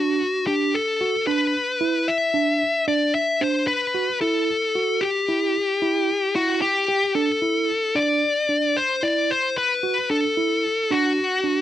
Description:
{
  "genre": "progressive instrumental, progressive",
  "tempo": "224 BPM (eighths)",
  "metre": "11/8",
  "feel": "straight",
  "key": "unclear",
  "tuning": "A4 = 440 Hz",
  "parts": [
    { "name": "high-gain lead guitar", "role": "melody", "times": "0.0-11.6 s", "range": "F#4 to E5", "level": "-20 LUFS", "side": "left 2 dB", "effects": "distortion" },
    { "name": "mellow tine electric piano", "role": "arpeggios", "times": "0.0-11.6 s", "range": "D4 to G4", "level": "-25 LUFS", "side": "right 4 dB", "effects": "auto-pan" }
  ],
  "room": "moderate studio reverb, RT60 0.9 s",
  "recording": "none",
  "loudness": "-19 LUFS",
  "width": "side -12 dB against mid",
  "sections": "0.0-7.2 A section; 7.2-11.6 B section",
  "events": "none",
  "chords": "0.0 Dsus2; 4.2 Em; 7.2 Dsus2"
}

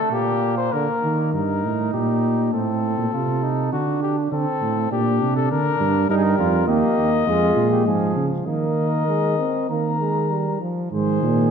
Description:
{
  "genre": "classical, imitative canzona for brass ensemble",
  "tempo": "100 BPM",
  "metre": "4/4",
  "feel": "straight",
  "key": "unclear",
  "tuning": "A4 = 440 Hz",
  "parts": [
    { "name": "mellow trumpet", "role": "melody", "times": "0.0-11.5 s", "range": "F#4 to Bb5", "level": "-25 LUFS", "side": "left 9 dB", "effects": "none" },
    { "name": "dark trumpet", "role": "second line", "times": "0.0-11.5 s", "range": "A3 to Bb4", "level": "-26 LUFS", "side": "right 6 dB", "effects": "none" },
    { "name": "warm trombone", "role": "accompaniment", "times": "0.1-1.3, 6.1-11.5 s", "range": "Bb2 to C4", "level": "-23 LUFS", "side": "right 2 dB", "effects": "none" },
    { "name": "warm tuba", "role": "bass", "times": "1.3-11.5 s", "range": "Eb2 to Eb3", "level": "-22 LUFS", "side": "right 2 dB", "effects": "none" }
  ],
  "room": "moderate concert hall reverb, RT60 1.8 s",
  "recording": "dark, warm production",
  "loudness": "-18 LUFS",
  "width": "side -6 dB against mid",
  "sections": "0.0-1.3 A section; 1.3-10.9 B section",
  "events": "none",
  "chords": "0.1 Gm/Bb; 1.3 Eb/G; 2.5 Adim; 3.7 D; 4.9 Gm/Bb; 6.1 Eb; 7.3 Db/F (rootless); 8.5 Ebsus4; 9.7 Eb; 10.9 Ab"
}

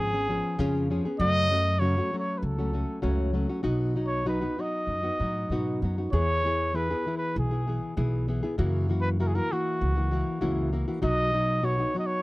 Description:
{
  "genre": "mexican folk, mariachi",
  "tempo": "98 BPM",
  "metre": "4/4",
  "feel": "rubato",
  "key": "unclear",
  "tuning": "A4 = 440 Hz",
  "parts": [
    { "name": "warm trumpet", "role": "melody", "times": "0.0-12.2 s", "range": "F#4 to D#5", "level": "-29 LUFS", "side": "equal", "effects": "none" },
    { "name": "nylon-string guitar", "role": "accompaniment", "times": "0.0-12.2 s", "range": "F#2 to G#4", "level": "-29 LUFS", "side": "left 1 dB", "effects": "none" },
    { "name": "upright bass", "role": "bass", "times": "0.0-11.8 s", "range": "G#1 to A2", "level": "-28 LUFS", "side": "equal", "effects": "none" }
  ],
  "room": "little or no reverb",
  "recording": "dry, close 1970s-style studio recording",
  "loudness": "-25 LUFS",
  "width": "side -20 dB against mid",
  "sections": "0.0-12.2 A section",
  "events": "none",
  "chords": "0.0 C#7; 1.2 F#m; 3.6 B; 6.1 E; 8.6 F#7; 11.0 B"
}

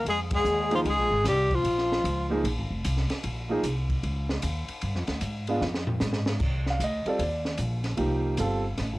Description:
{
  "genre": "modal jazz",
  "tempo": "151 BPM",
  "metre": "4/4",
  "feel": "swing 65% on 8ths",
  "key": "Bb dorian",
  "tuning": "A4 = 440 Hz",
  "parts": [
    { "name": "breathy tenor saxophone", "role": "melody", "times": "0.0-2.3 s", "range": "F4 to Ab4", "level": "-26 LUFS", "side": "equal", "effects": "none" },
    { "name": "breathy alto saxophone", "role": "second line", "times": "0.0-2.3 s", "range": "F3 to Ab3", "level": "-30 LUFS", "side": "left 2 dB", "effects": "none" },
    { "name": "upright bass", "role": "bass", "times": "0.0-9.0 s", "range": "F1 to Ab2", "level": "-29 LUFS", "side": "equal", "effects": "none" },
    { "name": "open jazz drum kit", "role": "drums", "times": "0.1-8.9 s", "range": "crash cymbal, hi-hat, kick drum, ride cymbal, snare drum, toms", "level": "-33 LUFS", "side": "equal", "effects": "cassette tape" },
    { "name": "warm grand piano", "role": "accompaniment", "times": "0.7-8.6 s", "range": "F3 to F5", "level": "-28 LUFS", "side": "right 2 dB", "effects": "none" }
  ],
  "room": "light reverb",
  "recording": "home recording on cassette",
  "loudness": "-25 LUFS",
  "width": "side -19 dB against mid",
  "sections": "0.0-6.4 A section; 6.4-9.0 B section",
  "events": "band accent 0.3; drum fill 5.6-6.4",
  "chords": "0.0 Bbm11; 4.8 G7(no3) (rootless); 6.4 Cm9"
}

